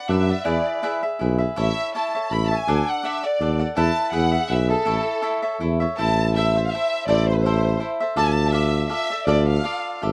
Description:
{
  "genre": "mexican folk, mariachi",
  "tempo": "164 BPM",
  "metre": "3/4",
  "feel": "swing 54% on 8ths, rubato",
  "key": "A major, A minor from 6.0 s",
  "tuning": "A4 = 443 Hz",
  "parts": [
    { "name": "rich studio violin section", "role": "melody", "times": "0.0-10.0 s", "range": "A4 to B5", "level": "-27 LUFS", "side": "equal", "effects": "none" },
    { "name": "cavaquinho", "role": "accompaniment", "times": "0.0-10.1 s", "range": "D4 to F#5", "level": "-28 LUFS", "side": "equal", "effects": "none" },
    { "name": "warm tuba", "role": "bass", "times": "0.1-10.1 s", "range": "G#1 to F#2", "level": "-23 LUFS", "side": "equal", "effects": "none" }
  ],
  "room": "little or no reverb",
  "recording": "dry, close 1970s-style studio recording",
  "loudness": "-22 LUFS",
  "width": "mono",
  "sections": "0.0-6.0 A section; 6.0-10.1 B section",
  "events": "none",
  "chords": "0.5 E; 1.6 A; 2.7 D; 3.8 Esus4; 4.1 E; 4.9 A; 6.0 Am; 8.2 Dmadd9",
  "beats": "0.09 | 0.45 0.82 1.20 | 1.57 1.94 2.31 | 2.68 3.04 3.40 | 3.77 4.13 4.49 | 4.86 5.22 5.60 | 5.98 6.35 6.72 | 7.08 7.45 7.81 | 8.18 8.54 8.90 | 9.27 9.64 10.02"
}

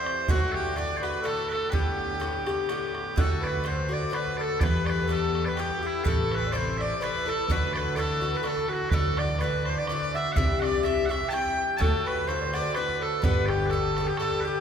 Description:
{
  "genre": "celtic folk, Celtic waltz",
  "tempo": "125 BPM",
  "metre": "3/4",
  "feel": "swing 54% on 8ths",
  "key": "unclear",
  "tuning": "A4 = 443 Hz",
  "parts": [
    { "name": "loud bright bagpipes", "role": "melody", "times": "0.0-14.6 s", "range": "E4 to A5", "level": "-30 LUFS", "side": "equal", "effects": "none" },
    { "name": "reedy concert flute", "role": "second line", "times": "0.0-14.6 s", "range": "E4 to G5", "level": "-34 LUFS", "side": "left 2 dB", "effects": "none" },
    { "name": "warm harmonica", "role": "second line", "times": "0.0-14.6 s", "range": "E4 to G5", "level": "-34 LUFS", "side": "right 5 dB", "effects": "none" },
    { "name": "Irish bouzouki", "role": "accompaniment", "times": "0.0-14.6 s", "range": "G2 to G4", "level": "-32 LUFS", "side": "left 5 dB", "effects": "none" },
    { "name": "bodhran", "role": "percussion", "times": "0.1-14.4 s", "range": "none", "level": "-31 LUFS", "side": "right 2 dB", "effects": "none" },
    { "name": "upright bass", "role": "bass", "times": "3.2-14.1 s", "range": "G1 to E2", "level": "-31 LUFS", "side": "equal", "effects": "none" }
  ],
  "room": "wet church reverb, RT60 3.5 s",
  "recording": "recorded in a church or concert hall",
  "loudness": "-24 LUFS",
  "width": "side -8 dB against mid",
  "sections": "0.0-3.2 A section; 3.2-14.6 B section",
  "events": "none",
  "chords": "0.3 D; 1.7 Gadd9; 3.2 D; 4.6 Em; 6.0 Am; 7.5 Dadd9; 10.4 C; 11.8 D; 13.2 G",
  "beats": "| 0.28 0.76 1.24 | 1.72 2.21 2.69 | 3.17 3.65 4.13 | 4.61 5.09 5.57 | 6.05 6.53 7.01 | 7.49 7.97 8.45 | 8.93 9.41 9.89 | 10.37 10.85 11.32 | 11.80 12.28 12.76 | 13.24 13.72 14.20"
}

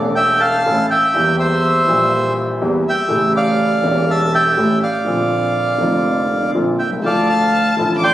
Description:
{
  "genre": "tango",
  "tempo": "122 BPM",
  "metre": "4/4",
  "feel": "rubato",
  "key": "unclear",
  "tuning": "A4 = 439 Hz",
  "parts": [
    { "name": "warm concert grand piano", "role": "accompaniment", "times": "0.0-8.1 s", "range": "E1 to A4", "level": "-19 LUFS", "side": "left 1 dB", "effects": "none" },
    { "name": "clear double bass", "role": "bass", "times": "0.0-8.1 s", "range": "E1 to E2", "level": "-23 LUFS", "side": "right 1 dB", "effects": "none" },
    { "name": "bandoneon", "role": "melody", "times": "0.2-8.1 s", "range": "C5 to A5", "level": "-16 LUFS", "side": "right 1 dB", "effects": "none" },
    { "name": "warm violin", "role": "second line", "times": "7.0-8.1 s", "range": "A5 to D6", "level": "-19 LUFS", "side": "left 4 dB", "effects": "none" }
  ],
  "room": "moderate concert hall reverb, RT60 1.8 s",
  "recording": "recorded on a phone in the room, studio reverb",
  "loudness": "-14 LUFS",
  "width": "side -13 dB against mid",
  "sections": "0.0-8.1 A section",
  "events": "none",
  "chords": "0.0 A; 1.1 Edim; 3.1 A7; 5.1 Bbadd9; 7.0 Dm",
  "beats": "0.17 0.66 | 1.15 1.64 2.12 2.61 | 3.10 3.59 4.08 4.57 | 5.06 5.55 6.04 6.54 | 7.04 7.54 8.04"
}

